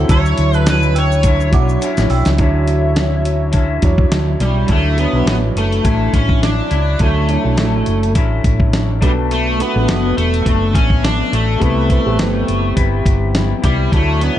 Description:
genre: indie pop, bedroom pop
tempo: 104 BPM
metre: 4/4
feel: swing 55% on 16ths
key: D major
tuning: A4 = 442 Hz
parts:
  - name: overdriven slide guitar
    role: melody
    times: 0.0-14.4 s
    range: G3 to C#5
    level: -20 LUFS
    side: equal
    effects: wide subtle chorus, tape echo
  - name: electric guitar through a small old amp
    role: accompaniment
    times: 0.0-14.4 s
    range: B2 to E4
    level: -23 LUFS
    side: left 6 dB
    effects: wide subtle chorus, vibrato effect
  - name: warm upright piano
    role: accompaniment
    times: 0.0-14.4 s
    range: F#3 to C#5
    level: -24 LUFS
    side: right 6 dB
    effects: cassette tape
  - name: hollow soft pad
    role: sustained chords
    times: 0.0-4.7, 13.9-14.4 s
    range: F#3 to F#5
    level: -24 LUFS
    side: left 1 dB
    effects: chorus
  - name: hollow-body short-scale fingered electric bass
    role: bass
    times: 0.0-14.4 s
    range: E1 to E2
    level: -17 LUFS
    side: equal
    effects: none
  - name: synth chime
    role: second line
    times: 0.1-2.3 s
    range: F#5 to F#6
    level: -26 LUFS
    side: right 8 dB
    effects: ensemble chorus, lush chorus, tape echo
  - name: dusty soul sampler-style drum kit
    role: drums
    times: 0.1-14.4 s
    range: hi-hat, kick drum, snare drum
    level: -17 LUFS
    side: equal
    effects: none
  - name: tube shaker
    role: percussion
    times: 0.1-2.4 s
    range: none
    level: -38 LUFS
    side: left 9 dB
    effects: none
room: light reverb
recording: dark, warm production, nothing above 10.5 kHz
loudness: -12 LUFS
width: side -12 dB against mid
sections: 0.0-2.4 A section; 2.4-4.7 B section; 4.7-14.4 C section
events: drum fill 1.8-2.4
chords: 0.1 Dmaj9; 9.0 Bm7; 11.6 Cmaj7

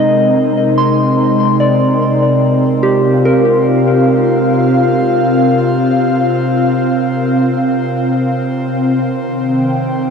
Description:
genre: ambient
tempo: 73 BPM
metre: 4/4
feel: straight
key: unclear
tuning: A4 = 440 Hz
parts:
  - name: airy breathy pad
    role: sustained chords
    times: 0.0-10.1 s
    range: C3 to G5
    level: -12 LUFS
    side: equal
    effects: chorus
  - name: soft synth bell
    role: arpeggios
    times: 0.0-9.0 s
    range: G4 to C6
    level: -16 LUFS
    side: left 1 dB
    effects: chorus, ping-pong delay
room: wet huge ambient reverb, RT60 8.2 s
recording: dark, warm production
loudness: -11 LUFS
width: side -6 dB against mid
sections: 0.0-10.1 A section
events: none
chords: 0.0 Abadd9/C; 2.4 Bbsus2/C; 9.0 Cm7

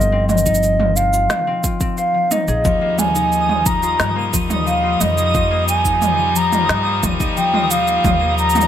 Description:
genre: folktronica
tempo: 89 BPM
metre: 4/4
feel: straight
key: unclear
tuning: A4 = 441 Hz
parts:
  - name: baroque flute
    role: melody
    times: 0.0-8.7 s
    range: Eb5 to Bb5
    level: -18 LUFS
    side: right 1 dB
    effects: tape echo
  - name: concert harp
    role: arpeggios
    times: 0.0-8.7 s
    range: F3 to C5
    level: -23 LUFS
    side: left 6 dB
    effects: tape echo
  - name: upright bass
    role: bass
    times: 0.0-8.7 s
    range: G1 to G2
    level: -22 LUFS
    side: equal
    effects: none
  - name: organic electronic drum kit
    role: drums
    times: 0.0-8.7 s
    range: cabasa, snare drum, toms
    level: -22 LUFS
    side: right 2 dB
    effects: none
  - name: electronic kick drum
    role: drums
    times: 0.5-8.2 s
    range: none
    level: -22 LUFS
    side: equal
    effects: none
  - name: bright string quartet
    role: sustained chords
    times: 2.6-8.7 s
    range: F3 to Eb4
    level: -25 LUFS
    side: left 3 dB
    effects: none
  - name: twinkling granular texture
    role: texture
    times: 3.1-8.7 s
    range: Eb6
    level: -25 LUFS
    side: right 1 dB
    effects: built-in reverb
room: light reverb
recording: none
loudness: -14 LUFS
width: side -10 dB against mid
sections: 0.0-8.7 A section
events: none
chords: 0.0 F7(no3); 2.7 Ebadd9

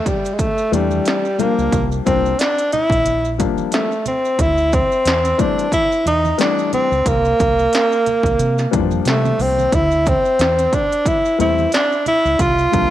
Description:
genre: hip hop, jazz-hop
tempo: 90 BPM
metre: 4/4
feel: swing 57% on 16ths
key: D minor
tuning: A4 = 439 Hz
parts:
  - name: breathy tenor saxophone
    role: melody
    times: 0.0-12.9 s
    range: G3 to F4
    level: -16 LUFS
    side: equal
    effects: slapback echo
  - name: industrial drum kit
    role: drums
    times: 0.1-12.9 s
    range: hi-hat, kick drum, snare drum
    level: -22 LUFS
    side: right 1 dB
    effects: none
  - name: congas and maracas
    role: percussion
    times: 0.1-12.9 s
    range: none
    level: -32 LUFS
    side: right 10 dB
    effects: none
  - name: warm upright piano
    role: accompaniment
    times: 0.7-12.9 s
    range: Bb2 to D4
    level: -21 LUFS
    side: left 10 dB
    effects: none
  - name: deep dub fingered electric bass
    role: bass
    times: 0.7-12.9 s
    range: Bb1 to C3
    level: -21 LUFS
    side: right 1 dB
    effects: none
room: light reverb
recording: 1960s-style stereo with parts hard left and right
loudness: -14 LUFS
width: side -12 dB against mid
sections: 0.0-12.9 A section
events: none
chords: 0.0 Dsus4; 1.7 C9sus4; 4.4 D9sus4; 7.1 C9sus4; 9.7 D9sus4; 12.4 C9sus4

